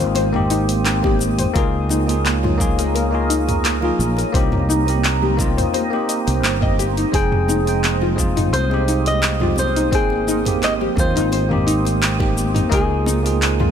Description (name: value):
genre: sunset chillout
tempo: 86 BPM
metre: 4/4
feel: swing 53% on 16ths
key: F minor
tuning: A4 = 441 Hz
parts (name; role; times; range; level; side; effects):
- bell-like tine electric piano; accompaniment; 0.0-13.7 s; Ab3 to G5; -23 LUFS; moving between left 8 dB and right 8 dB; auto-pan, tape echo
- shimmering ambient pad; sustained chords; 0.0-13.7 s; Db4 to Eb6; -27 LUFS; right 1 dB; chorus, built-in reverb, phaser
- soft round pluck; arpeggios; 0.0-13.7 s; Eb4 to Eb5; -25 LUFS; left 5 dB; lush chorus, tape echo
- fingered electric bass; bass; 0.0-13.7 s; F1 to Eb2; -21 LUFS; equal; none
- downlifter; sound effects; 0.0-1.5 s; none; barely audible; none; none
- congas; percussion; 0.1-13.7 s; none; -30 LUFS; right 4 dB; none
- deep house drum kit; drums; 0.2-13.7 s; cabasa, handclaps, hi-hat, toms; -23 LUFS; equal; none
- electronic kick drum; drums; 1.0-12.9 s; none; -21 LUFS; equal; none
- flamenco guitar; melody; 7.1-13.7 s; Ab4 to Eb5; -23 LUFS; right 1 dB; tape echo
room: light reverb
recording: none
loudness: -16 LUFS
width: side -8 dB against mid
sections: 0.0-13.7 A section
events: none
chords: 0.0 Abmaj7; 1.6 Db69; 4.3 Cm7; 7.1 Fm7; 9.9 Abmaj7; 12.7 Db69